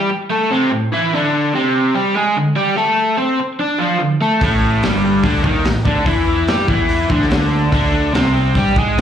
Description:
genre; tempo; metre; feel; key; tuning
garage rock duo or trio; 145 BPM; 4/4; straight; unclear; A4 = 441 Hz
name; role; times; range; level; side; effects
crunchy overdriven guitar; riff; 0.0-9.0 s; G2 to D5; -15 LUFS; equal; slapback echo
fuzz fingered electric bass; bass; 4.4-9.0 s; G1 to G#2; -19 LUFS; equal; overdrive
crunchy breakbeat drum kit; drums; 4.4-9.0 s; hi-hat, kick drum, snare drum; -19 LUFS; equal; none
room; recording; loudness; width
light reverb; live gig heard through the venue's PA, club reverb; -13 LUFS; side -9 dB against mid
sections
0.0-9.0 A section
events
none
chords
0.0 A5; 1.1 D5; 4.4 A5; 7.7 D5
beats
0.30 0.71 | 1.12 1.53 1.95 2.36 | 2.77 3.19 3.60 4.01 | 4.42 4.84 5.25 5.66 | 6.08 6.49 6.90 7.32 | 7.73 8.14 8.56 8.97

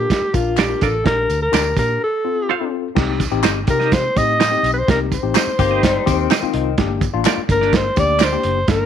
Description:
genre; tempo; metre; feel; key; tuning
uptempo 1960s-style soul; 126 BPM; 4/4; straight; unclear; A4 = 440 Hz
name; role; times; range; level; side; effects
breathy alto saxophone; melody; 0.0-8.9 s; F4 to Eb5; -19 LUFS; equal; none
tine electric piano; accompaniment; 0.0-8.9 s; Bb3 to C6; -23 LUFS; left 14 dB; overdrive, fast stereo tremolo
vintage muted fingered electric bass; bass; 0.0-8.9 s; Gb1 to C3; -23 LUFS; left 1 dB; none
warm soul drum kit; drums; 0.1-8.8 s; crash cymbal, hi-hat, kick drum, snare drum; -19 LUFS; right 3 dB; none
tambourine and handclaps; percussion; 0.1-8.8 s; none; -28 LUFS; left 5 dB; none
clean electric guitar; stabs; 0.6-8.3 s; D4 to F5; -23 LUFS; right 12 dB; tremolo
direct-recorded clean electric guitar; riff; 5.6-6.7 s; Eb3 to G4; -24 LUFS; left 14 dB; wide subtle chorus
room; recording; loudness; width
light reverb, small room ambience; 1960s-style stereo with parts hard left and right; -15 LUFS; side -8 dB against mid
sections
0.0-3.0 A section; 3.0-8.9 B section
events
break 2.0-3.0; tine electric piano fill 5.8-6.8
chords
0.0 Bb; 1.1 Gm/Bb; 2.0 F; 3.0 Cm; 6.8 Gm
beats
0.10 0.58 | 1.06 1.54 2.02 2.49 | 2.97 3.45 3.92 4.40 | 4.88 5.35 5.83 6.31 | 6.78 7.26 7.73 8.21 | 8.68

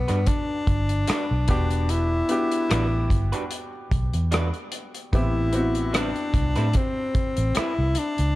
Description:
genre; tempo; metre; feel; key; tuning
lush 1970s-style soul; 74 BPM; 4/4; swing 54% on 16ths; unclear; A4 = 441 Hz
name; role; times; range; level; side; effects
breathy tenor saxophone; melody; 0.0-8.4 s; B3 to E4; -26 LUFS; left 2 dB; none
clear concert grand piano; accompaniment; 0.0-8.4 s; B3 to A4; -31 LUFS; left 1 dB; none
vintage muted fingered electric bass; bass; 0.0-8.4 s; E1 to A2; -24 LUFS; equal; none
electric guitar through a small old amp; riff; 0.1-7.7 s; G3 to B4; -33 LUFS; right 4 dB; none
modern studio drum kit; drums; 0.1-8.4 s; hi-hat, kick drum, rim click; -26 LUFS; equal; none
room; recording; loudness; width
light reverb, small room ambience; dark, warm production; -21 LUFS; side -17 dB against mid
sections
0.0-8.4 A section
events
none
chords
0.0 Gmaj7; 1.5 Em9; 5.1 Am9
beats
0.27 1.08 | 1.89 2.70 3.51 4.32 | 5.13 5.94 6.75 7.56

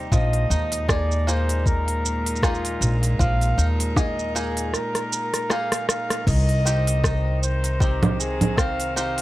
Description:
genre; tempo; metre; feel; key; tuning
folktronica; 78 BPM; 4/4; swing 56% on 16ths; C minor; A4 = 440 Hz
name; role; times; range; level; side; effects
rich string quartet; sustained chords; 0.0-9.2 s; Bb2 to C5; -31 LUFS; equal; none
bluegrass banjo; arpeggios; 0.0-9.2 s; F3 to Ab4; -32 LUFS; left 1 dB; tape echo
upright bass; bass; 0.0-9.2 s; Bb1 to Eb2; -23 LUFS; equal; none
mellow flugelhorn; melody; 0.1-9.2 s; F4 to F5; -28 LUFS; equal; tape echo
electronic kick drum; drums; 0.1-8.7 s; none; -22 LUFS; equal; none
organic electronic drum kit; drums; 0.1-9.2 s; congas, crash cymbal, hi-hat, rim click, shaker; -25 LUFS; right 1 dB; none
room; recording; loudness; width
small room ambience; none; -20 LUFS; side -16 dB against mid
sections
0.0-6.3 A section; 6.3-9.2 B section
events
break 4.7-6.3; drum fill 4.7-6.3; band accent 6.1-6.5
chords
0.1 Bb7sus4; 6.3 Cm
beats
| 0.11 0.88 1.65 2.42 | 3.19 3.96 4.73 5.50 | 6.27 7.04 7.81 8.58

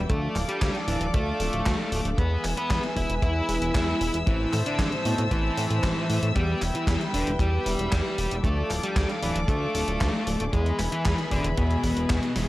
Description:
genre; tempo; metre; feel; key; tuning
italo disco; 115 BPM; 4/4; straight; unclear; A4 = 438 Hz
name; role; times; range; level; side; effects
warm studio string section; sustained chords; 0.0-12.5 s; G#4 to E6; -31 LUFS; left 1 dB; vintage 12-bit sampler grit
mellow synth brass; stabs; 0.0-12.5 s; A2 to C5; -35 LUFS; left 2 dB; chorus
chorused synth bass; bass; 0.0-12.5 s; D1 to A2; -28 LUFS; equal; none
fuzz lead guitar; melody; 0.1-12.5 s; B2 to E5; -29 LUFS; equal; distortion
gated 80s digital drum machine; drums; 0.1-12.5 s; handclaps, hi-hat, snare drum; -32 LUFS; equal; gated reverb, gated reverb snare, overdrive
kick drum; drums; 0.1-12.2 s; none; -26 LUFS; equal; none
room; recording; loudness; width
little or no reverb; dry, gritty hardware recording; -23 LUFS; side -17 dB against mid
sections
0.0-12.5 A section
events
none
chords
0.1 Dm; 2.2 E; 4.3 Am; 6.4 Em; 8.4 Dm; 10.5 E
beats
| 0.10 0.62 1.14 1.66 | 2.18 2.71 3.23 3.75 | 4.27 4.79 5.31 5.83 | 6.36 6.88 7.40 7.92 | 8.44 8.97 9.49 10.01 | 10.53 11.05 11.57 12.10

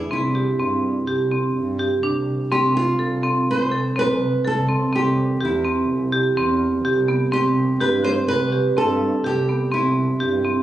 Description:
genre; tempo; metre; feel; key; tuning
contemporary instrumental, chamber music in an uneven meter; 125 BPM; 5/4; straight; C major; A4 = 440 Hz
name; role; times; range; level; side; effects
flamenco guitar; melody; 0.0-10.6 s; E4 to C5; -25 LUFS; right 2 dB; none
dark double bass; bass; 0.0-10.6 s; C2 to G2; -25 LUFS; equal; none
marimba with medium hard mallets; arpeggios; 0.1-10.6 s; B3 to A4; -20 LUFS; right 1 dB; none
room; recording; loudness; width
light reverb; recorded on a phone in the room, studio reverb; -18 LUFS; side -13 dB against mid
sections
0.0-2.5 A section; 2.5-10.6 B section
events
none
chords
0.1 C; 2.5 F/C; 4.9 C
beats
| 0.11 0.59 1.07 1.56 2.04 | 2.52 3.00 3.48 3.96 4.45 | 4.93 5.41 5.89 6.37 6.85 | 7.33 7.81 8.29 8.77 9.25 | 9.73 10.21

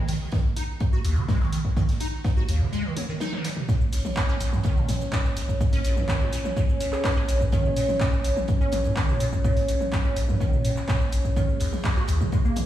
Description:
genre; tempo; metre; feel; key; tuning
acid house; 125 BPM; 4/4; straight; Bb minor; A4 = 440 Hz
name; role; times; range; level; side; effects
liquid acid bass; riff; 0.0-12.6 s; Bb1 to Gb4; -27 LUFS; equal; phaser, tube saturation, ensemble chorus, sidechain pumping, tape echo
compact cocktail drum kit; drums; 0.1-12.7 s; hi-hat, snare drum; -42 LUFS; right 2 dB; high-pass filter on hats, high-pass filter on snare, high-pass filter on room
punchy analog drum machine; drums; 0.1-12.7 s; handclaps, hi-hat, shaker, toms; -32 LUFS; equal; none
electronic kick drum; drums; 0.3-12.4 s; none; -24 LUFS; equal; none
dark analog pad; sustained chords; 3.7-12.7 s; Ab3 to Db5; -29 LUFS; equal; chorus, sidechain pumping
hollow square pluck; melody; 6.9-7.1 s; Ab4; -39 LUFS; right 1 dB; chorus, tape echo
room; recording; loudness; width
light reverb; played on a big sound system in a bare room, stone room reverb, studio ambience; -22 LUFS; side -12 dB against mid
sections
0.0-12.7 A section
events
break 2.7-3.7; drum fill 3.0-3.7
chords
0.0 N.C.; 3.7 Bbm; 11.4 N.C.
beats
0.33 0.81 1.29 | 1.77 2.25 2.73 3.21 | 3.69 4.17 4.65 5.13 | 5.61 6.09 6.57 7.05 | 7.53 8.01 8.49 8.97 | 9.45 9.93 10.41 10.89 | 11.37 11.85 12.33

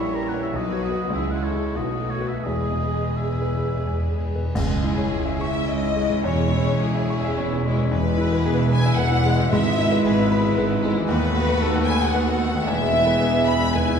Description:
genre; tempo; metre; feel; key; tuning
classical, romantic movement for piano and orchestra; 82-117 BPM; 3/4; rubato; E major, C# minor from 4.5 s; A4 = 440 Hz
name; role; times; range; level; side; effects
clear grand piano; melody; 0.0-14.0 s; A#1 to C#6; -24 LUFS; left 2 dB; none
rich studio violin section; melody; 0.0-14.0 s; E4 to C#5; -35 LUFS; left 2 dB; none
warm oboe; second line; 0.0-4.2 s; C#5 to C#6; -32 LUFS; right 1 dB; none
warm studio violin section; second line; 0.0-14.0 s; E4 to B5; -26 LUFS; left 1 dB; none
rich studio viola section; accompaniment; 0.0-14.0 s; E3 to G#4; -30 LUFS; right 1 dB; none
mellow French horn section; sustained chords; 0.0-4.2 s; F#3 to G#4; -31 LUFS; equal; none
clear studio double bass section; bass; 0.0-14.0 s; E1 to D#2; -26 LUFS; right 2 dB; none
rich studio cello section; bass; 0.0-14.0 s; C#2 to C#3; -30 LUFS; right 2 dB; none
cymbal swell, clash cymbals and concert bass drum; percussion; 0.5-5.7 s; none; -34 LUFS; equal; none
timpani; percussion; 2.5-8.7 s; E2; -30 LUFS; equal; none
dark tuba; bass; 4.5-14.0 s; E1 to D#2; -29 LUFS; right 2 dB; none
room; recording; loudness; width
wet scoring stage reverb, RT60 1.7 s; heard from further back in the room; -19 LUFS; side -7 dB against mid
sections
0.0-4.5 A section; 4.5-14.0 B section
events
timpani fill 2.5-4.5; band accent 4.5-5.1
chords
0.0 A#dim7; 0.5 B; 1.1 C#m; 1.8 B7; 2.5 E; 4.5 C#m; 6.3 C#m/E; 7.9 E; 9.5 E/G#; 11.1 B7/D#; 12.7 E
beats
| 0.54 1.12 1.76 | 2.46 3.18 3.87 | 4.55 5.13 5.69 | 6.25 6.82 7.39 | 7.93 8.46 8.99 | 9.52 10.05 10.57 | 11.09 11.61 12.13 | 12.67 13.20 13.74

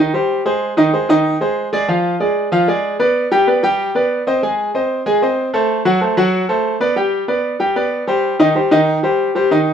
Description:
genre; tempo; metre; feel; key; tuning
latin; 189 BPM; 4/4; straight; C harmonic minor; A4 = 440 Hz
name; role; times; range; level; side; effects
bright grand piano; solo; 0.0-9.7 s; Eb3 to Ab5; -14 LUFS; equal; none
room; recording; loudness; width
moderate studio reverb, RT60 0.7 s; minimal, uncompressed stereo recording; -14 LUFS; side -8 dB against mid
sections
0.0-9.5 A section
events
none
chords
0.0 Cm; 0.6 Ab/Eb; 1.9 Ddim; 3.2 G; 4.4 Ab; 5.7 D7/F# (rootless); 7.0 G; 8.2 Cm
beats
0.29 | 0.61 0.93 1.25 1.57 | 1.88 2.20 2.52 2.84 | 3.15 3.47 3.79 4.11 | 4.42 4.74 5.06 5.38 | 5.69 6.01 6.33 6.64 | 6.96 7.28 7.60 7.91 | 8.23 8.55 8.87 9.18 | 9.50

